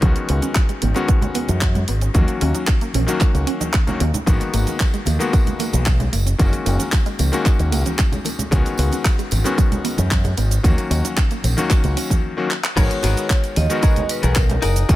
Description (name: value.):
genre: nu-disco, nu disco.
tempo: 113 BPM.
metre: 4/4.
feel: straight.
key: G# minor.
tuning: A4 = 438 Hz.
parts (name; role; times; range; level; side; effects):
bright electric grand piano; accompaniment; 0.0-15.0 s; D#3 to A#4; -25 LUFS; left 4 dB; sidechain pumping, low-pass filter, ping-pong delay.
wide unison pluck; arpeggios; 0.0-12.2 s; F#3 to D#4; -29 LUFS; moving between left 1 dB and right 10 dB; auto-pan, sidechain pumping, dub echo.
fingered electric bass with an envelope filter; bass; 0.0-15.0 s; F#1 to F#2; -19 LUFS; equal; sidechain pumping.
electronic kick drum; drums; 0.0-15.0 s; none; -17 LUFS; equal; none.
house drum kit; drums; 0.0-15.0 s; crash cymbal, handclaps, hi-hat, shaker; -26 LUFS; right 1 dB; none.
congas and tambourine; percussion; 0.0-15.0 s; none; -29 LUFS; right 2 dB; none.
vibraphone with hard mallets; melody; 12.8-15.0 s; A#4 to D#5; -26 LUFS; right 1 dB; dub echo.
direct-recorded clean electric guitar; riff; 12.8-15.0 s; B3 to A#4; -27 LUFS; left 4 dB; lush chorus.
room: little or no reverb.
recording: none.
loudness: -16 LUFS.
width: side -15 dB against mid.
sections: 0.0-12.8 A section; 12.8-15.0 B section.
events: break 12.2-12.8; drum fill 12.5; drop 12.8-15.0.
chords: 0.0 C#9sus4; 2.1 D#m7; 4.3 G#m9; 6.1 F#69; 8.5 C#9sus4; 10.6 D#m7; 12.8 G#m9.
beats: | 0.03 0.56 1.09 1.62 | 2.15 2.68 3.21 3.74 | 4.27 4.80 5.33 5.87 | 6.40 6.93 7.46 7.99 | 8.52 9.05 9.58 10.11 | 10.64 11.18 11.71 12.24 | 12.77 13.30 13.83 14.36 | 14.89.